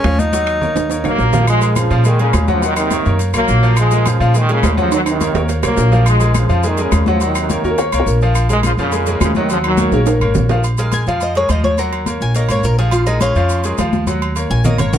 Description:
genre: latin, salsa.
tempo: 210 BPM.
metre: 4/4.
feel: straight.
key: Bb minor.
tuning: A4 = 440 Hz.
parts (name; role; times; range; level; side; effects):
warm tenor saxophone; melody; 0.0-1.2 s; Db4 to Eb4; -18 LUFS; left 1 dB; none.
bright baby grand piano; accompaniment; 0.0-15.0 s; F3 to Gb5; -21 LUFS; equal; none.
upright bass; bass; 0.0-15.0 s; Ab1 to Bb2; -16 LUFS; equal; none.
claves; percussion; 0.0-10.4 s; none; -29 LUFS; left 7 dB; none.
congas; percussion; 0.0-15.0 s; none; -22 LUFS; left 2 dB; none.
timbales and agogo bells; percussion; 0.0-14.9 s; none; -24 LUFS; right 7 dB; none.
maracas; percussion; 0.1-15.0 s; none; -32 LUFS; left 8 dB; none.
bright trombone section; melody; 1.1-10.0 s; Bb2 to Bb3; -18 LUFS; equal; none.
felt-muted upright piano; second line; 7.6-10.6 s; Gb4 to Db5; -19 LUFS; left 2 dB; none.
Cuban tres; melody; 10.8-15.0 s; Db4 to Ab5; -19 LUFS; left 1 dB; none.
room: light reverb.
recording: dark, warm production.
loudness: -12 LUFS.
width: side -9 dB against mid.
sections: 0.0-1.5 A section; 1.5-10.6 B section; 10.6-15.0 C section.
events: drum fill 0.3-1.5, 4.9-6.1, 9.8-10.6, 14.1-15.0; Cuban tres solo 10.6-15.0.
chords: 0.3 Ebm7; 1.5 Bbm7; 2.6 Ebm7; 3.8 Bbm7; 4.9 Ebm7; 6.1 Bbm7; 7.2 Ebm7; 8.3 Bbm7; 9.5 Ebm7; 10.6 Bb5; 11.8 Ebm7; 12.9 Bbm7; 14.1 Ebm7.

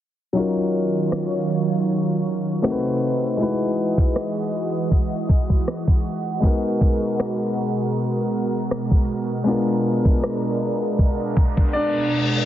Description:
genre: contemporary R&B.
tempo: 79 BPM.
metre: 4/4.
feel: swing 54% on 16ths.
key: unclear.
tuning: A4 = 443 Hz.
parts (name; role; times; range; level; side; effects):
warm concert grand piano; accompaniment; 0.3-12.5 s; Gb3 to D5; -23 LUFS; left 2 dB; none.
lush unison pad; sustained chords; 0.4-12.5 s; Cb3 to D#5; -24 LUFS; right 2 dB; chorus, phaser.
smooth R&B drum kit; drums; 1.1-11.7 s; kick drum, rim click; -19 LUFS; equal; none.
reverse cymbal; sound effects; 11.7-12.5 s; none; -26 LUFS; left 4 dB; none.
room: light reverb, digital ambience.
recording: heavily compressed radio sound, multiband compression, low-pass filter, nothing above 7.8 kHz.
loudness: -19 LUFS.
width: side -12 dB against mid.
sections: 0.4-12.5 A section.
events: filter sweep 0.4-12.5; reverse cymbal 11.7-12.5; silent gap 11.7-12.5.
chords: 0.4 Ebm9; 2.6 B7b9; 3.4 Emaj9; 6.4 Abm9; 9.5 Bb7b9.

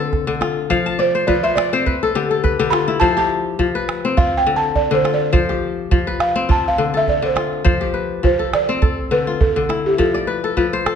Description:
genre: west african traditional, West African string and xylophone music.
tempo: 103 BPM.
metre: 4/4.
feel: swing 55% on 16ths.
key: F lydian.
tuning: A4 = 440 Hz.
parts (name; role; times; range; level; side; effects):
balafon; melody; 0.0-10.5 s; G4 to B5; -19 LUFS; right 2 dB; none.
kora; arpeggios; 0.0-11.0 s; D3 to A5; -19 LUFS; left 5 dB; none.
calabash; percussion; 0.1-11.0 s; none; -21 LUFS; right 3 dB; none.
room: moderate recital hall reverb, RT60 1.3 s.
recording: dark, warm production, tape saturation.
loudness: -15 LUFS.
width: side -7 dB against mid.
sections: 0.0-7.7 A section; 7.7-11.0 B section.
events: balafon solo 0.0-7.7; kora fill 0.7-3.0, 10.1-11.0.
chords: 0.0 Dm; 0.7 F5; 1.9 N.C.; 3.0 F; 4.2 Dm; 5.3 F5; 6.5 Dm; 7.7 F; 8.8 Dm; 10.0 F.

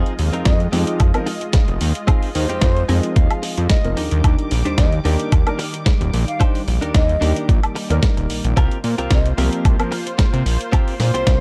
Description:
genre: nu-disco, nu disco.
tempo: 111 BPM.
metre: 4/4.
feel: swing 54% on 16ths.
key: F dorian.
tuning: A4 = 439 Hz.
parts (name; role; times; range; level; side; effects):
dark concert grand piano; accompaniment; 0.0-9.9 s; Eb3 to D5; -28 LUFS; equal; sidechain pumping, analog delay.
lush unison pad; sustained chords; 0.0-11.4 s; Eb3 to D6; -32 LUFS; equal; chorus, sidechain pumping.
direct-recorded clean electric guitar; riff; 0.0-11.3 s; C4 to Ab5; -28 LUFS; equal; lush chorus.
fat analog bass; bass; 0.0-11.4 s; Eb1 to C3; -22 LUFS; equal; none.
dusty soul sampler-style drum kit; drums; 0.1-11.4 s; hi-hat, snare drum, woodblock; -27 LUFS; equal; none.
breathy concert flute; melody; 0.5-11.4 s; C5 to F5; -29 LUFS; equal; tape echo.
electronic kick drum; drums; 0.5-11.4 s; none; -18 LUFS; equal; none.
room: little or no reverb.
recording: dry, gritty hardware recording, cassette tape.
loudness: -18 LUFS.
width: mono.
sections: 0.0-11.4 A section.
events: clean electric guitar fill 2.6-4.2.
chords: 0.0 Fm7; 4.0 Ebmaj7; 8.6 C7sus4.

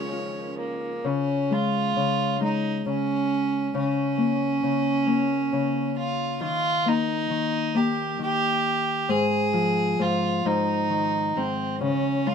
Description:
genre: children's music, lullaby.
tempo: 45 BPM (dotted quarters).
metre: 6/8.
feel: rubato.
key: Db major.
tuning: A4 = 442 Hz.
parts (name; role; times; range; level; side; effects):
rich violin; melody; 0.0-12.3 s; Bb3 to Db5; -25 LUFS; right 3 dB; none.
Celtic harp; accompaniment; 0.0-12.3 s; Ab2 to Ab4; -26 LUFS; left 5 dB; none.
rich studio string section; sustained chords; 0.0-1.0 s; Eb3 to Db4; -38 LUFS; right 5 dB; none.
room: light reverb.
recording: minimal, uncompressed stereo recording.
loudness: -22 LUFS.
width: side -7 dB against mid.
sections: 0.0-1.0 A section; 1.0-12.3 B section.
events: none.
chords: 0.0 Dbadd9; 1.0 Db; 3.7 Bbm/Db; 6.4 Eb; 9.1 Fm/Ab; 10.4 Ab5; 11.8 Db5.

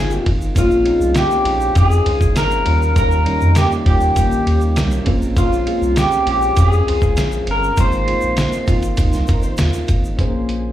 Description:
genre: indie pop, bedroom pop.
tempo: 100 BPM.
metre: 4/4.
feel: straight.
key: Bb dorian.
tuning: A4 = 439 Hz.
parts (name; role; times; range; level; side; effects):
electric guitar through a small old amp; melody; 0.0-9.6 s; F4 to C5; -18 LUFS; left 1 dB; lush chorus, slapback echo, plate reverb.
nylon-string guitar; accompaniment; 0.0-10.7 s; Eb3 to C5; -27 LUFS; left 2 dB; ensemble chorus, warbly pitch drift, slapback echo.
soft electric-piano-like synth keys; accompaniment; 0.0-10.7 s; G3 to C5; -25 LUFS; right 2 dB; chorus, cassette tape, plate reverb, slapback echo.
round analog bass; bass; 0.0-10.7 s; G1 to F2; -18 LUFS; equal; none.
egg shaker; percussion; 0.1-10.2 s; none; -38 LUFS; left 3 dB; none.
lo-fi sampler-style drum kit; drums; 0.3-10.6 s; hi-hat, kick drum, ride cymbal, snare drum; -19 LUFS; equal; none.
room: light reverb.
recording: live gig heard through the venue's PA, club reverb.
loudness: -14 LUFS.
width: side -12 dB against mid.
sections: 0.0-10.2 A section.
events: none.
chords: 0.0 Ab6; 0.6 Bbm9; 2.7 Eb7; 5.1 Bbm9; 7.8 Ab6; 10.2 Bbm9.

